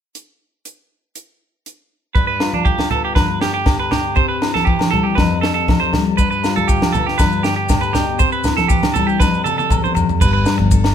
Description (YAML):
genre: highlife guitar band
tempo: 119 BPM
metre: 4/4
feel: straight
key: G mixolydian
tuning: A4 = 441 Hz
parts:
  - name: tight funk drum kit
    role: drums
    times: 0.1-10.9 s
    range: crash cymbal, hi-hat, kick drum, snare drum, toms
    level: -18 LUFS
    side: equal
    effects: none
  - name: clean electric guitar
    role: arpeggios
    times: 2.1-10.6 s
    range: D4 to C5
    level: -19 LUFS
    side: right 6 dB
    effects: none
  - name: picked steel-string acoustic guitar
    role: accompaniment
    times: 2.2-10.9 s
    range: E2 to A4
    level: -21 LUFS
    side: left 5 dB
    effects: none
  - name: agogo bells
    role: percussion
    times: 2.4-10.9 s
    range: none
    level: -26 LUFS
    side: left 6 dB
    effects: none
  - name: congas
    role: percussion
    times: 2.5-10.7 s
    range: none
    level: -23 LUFS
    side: right 1 dB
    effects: none
  - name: maracas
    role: percussion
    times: 6.2-10.8 s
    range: none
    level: -32 LUFS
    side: left 8 dB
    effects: none
  - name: fingered electric bass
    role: bass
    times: 10.2-10.9 s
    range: G1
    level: -17 LUFS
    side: equal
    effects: none
room: moderate stone room reverb, RT60 0.9 s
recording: band playing live in one room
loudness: -14 LUFS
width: side -8 dB against mid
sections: 0.1-2.2 A section; 2.2-10.2 B section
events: drum fill 9.2-10.2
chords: 0.1 N.C.; 2.2 G; 4.2 C; 5.2 Fadd9; 6.2 G; 8.2 C; 9.2 Fadd9; 10.2 G